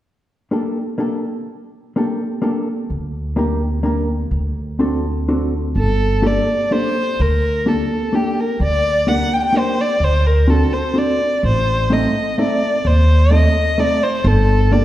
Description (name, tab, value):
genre	musette waltz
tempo	127 BPM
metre	3/4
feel	straight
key	G harmonic minor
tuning	A4 = 440 Hz
part	hollow-body jazz guitar	accompaniment	0.5-14.8 s	A3 to Bb4	-20 LUFS	equal	none
part	upright bass	bass	2.9-14.8 s	G1 to Eb2	-17 LUFS	equal	none
part	warm violin	melody	5.8-14.8 s	G4 to G5	-18 LUFS	equal	none
room	wet scoring stage reverb, RT60 1.6 s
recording	heard from further back in the room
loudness	-15 LUFS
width	side -13 dB against mid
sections	0.0-5.8 A section; 5.8-14.8 B section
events	none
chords	0.0 Gmadd9; 2.9 Gm/D; 4.3 D7; 5.8 Gmadd9; 8.6 Gm/D; 10.0 D7; 11.4 Adim; 14.2 Gmadd9